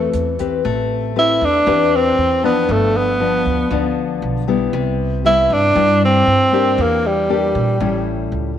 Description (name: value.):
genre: bossa nova.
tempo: 117 BPM.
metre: 4/4.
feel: straight.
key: A minor.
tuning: A4 = 442 Hz.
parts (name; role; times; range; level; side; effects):
breathy tenor saxophone; melody; 0.0-8.1 s; G3 to E4; -15 LUFS; right 1 dB; tape echo.
nylon-string guitar; accompaniment; 0.0-8.6 s; G2 to B4; -19 LUFS; left 7 dB; none.
upright bass; bass; 0.0-8.6 s; G1 to Bb2; -22 LUFS; right 3 dB; none.
jazz brush drum kit; drums; 0.1-0.5 s; hi-hat, kick drum; -37 LUFS; right 6 dB; none.
room: moderate echo chamber reverb, RT60 1.4 s, small room ambience.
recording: 1960s-style stereo with parts hard left and right.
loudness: -14 LUFS.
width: side -10 dB against mid.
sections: 0.6-8.6 A section.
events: none.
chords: 0.0 Am9; 2.7 G7; 4.7 Cmaj7; 6.8 Em7b5; 7.8 A7.